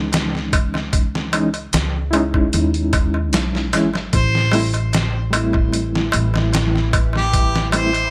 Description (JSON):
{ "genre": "trip hop", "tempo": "75 BPM", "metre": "4/4", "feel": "straight", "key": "unclear", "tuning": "A4 = 440 Hz", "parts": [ { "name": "bright reed electric piano", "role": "accompaniment", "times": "0.0-7.9 s", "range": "E3 to E4", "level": "-24 LUFS", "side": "equal", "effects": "overdrive, tremolo, tape echo" }, { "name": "upright bass", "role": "bass", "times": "0.0-8.1 s", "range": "G#1 to D#2", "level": "-24 LUFS", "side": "equal", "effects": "none" }, { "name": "trip hop sampler-style drum kit", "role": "drums", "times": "0.1-8.1 s", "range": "hi-hat, kick drum, snare drum", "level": "-23 LUFS", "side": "equal", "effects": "none" }, { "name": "darbuka", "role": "percussion", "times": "0.1-8.1 s", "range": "none", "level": "-27 LUFS", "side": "equal", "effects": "none" }, { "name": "warm harmonica", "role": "melody", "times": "4.1-8.1 s", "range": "G4 to C5", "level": "-24 LUFS", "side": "equal", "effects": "tape echo" }, { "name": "bowed-like drone", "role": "texture", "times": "5.2-8.1 s", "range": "E3 to E4", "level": "-32 LUFS", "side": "equal", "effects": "built-in reverb" } ], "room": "light reverb", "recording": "none", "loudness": "-18 LUFS", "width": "mono", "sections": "0.0-8.1 A section", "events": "none", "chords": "0.0 C#madd9; 4.1 Am7" }